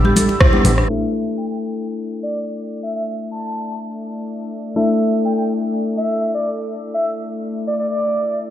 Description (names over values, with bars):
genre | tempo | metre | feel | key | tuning
afro house | 124 BPM | 4/4 | swing 53% on 16ths | unclear | A4 = 443 Hz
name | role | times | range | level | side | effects
dark analog pad | sustained chords | 0.0-8.5 s | G4 to E6 | -29 LUFS | right 1 dB | chorus, sidechain pumping
buzzing marimba with medium hard mallets | arpeggios | 0.0-0.8 s | D4 to B4 | -25 LUFS | right 1 dB | sidechain pumping, tape echo
congas | percussion | 0.0-0.8 s | none | -19 LUFS | equal | none
afro-pop drum kit | drums | 0.2-1.0 s | crash cymbal, hi-hat, rim click, toms | -18 LUFS | right 1 dB | none
electronic kick drum | drums | 0.4-0.5 s | none | -14 LUFS | equal | none
tine electric piano | stabs | 0.5-8.5 s | A3 to A4 | -23 LUFS | left 3 dB | overdrive, sidechain pumping, tape echo
warm 808-style bass | bass | 0.6-0.8 s | A1 | -18 LUFS | equal | sidechain pumping
expressive synth lead | melody | 0.9-8.4 s | D5 to A5 | -23 LUFS | right 1 dB | chorus, tape echo
room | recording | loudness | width
moderate lush hall reverb, RT60 1.9 s | played on a big sound system in a bare room, stone room reverb, low-pass filter | -18 LUFS | side -11 dB against mid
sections
0.9-8.5 A section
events
band accent 0.4; filter sweep on analog synth pad 0.9-8.5; filter sweep 0.9-8.5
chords
0.0 Em7; 0.9 Dsus2